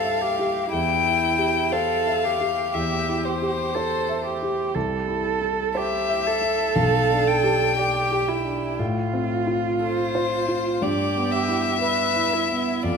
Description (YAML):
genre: classical, slow romantic movement for piano quartet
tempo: 59 BPM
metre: 4/4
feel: rubato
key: C major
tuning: A4 = 440 Hz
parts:
  - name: warm violin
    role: melody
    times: 0.0-13.0 s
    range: C5 to G5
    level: -24 LUFS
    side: left 8 dB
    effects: none
  - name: dark cello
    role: second line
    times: 0.0-13.0 s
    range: E4 to B4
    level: -25 LUFS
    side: right 7 dB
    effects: none
  - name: warm grand piano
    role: accompaniment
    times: 0.0-13.0 s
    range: B1 to E5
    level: -26 LUFS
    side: left 1 dB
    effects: none
room: wet recital hall reverb, RT60 1.6 s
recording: minimal, uncompressed stereo recording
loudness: -20 LUFS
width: side -6 dB against mid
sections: 0.0-13.0 A section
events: none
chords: 0.0 C; 0.7 C/E; 4.8 Am/C; 6.8 G/B; 8.8 F/A; 10.8 Em/G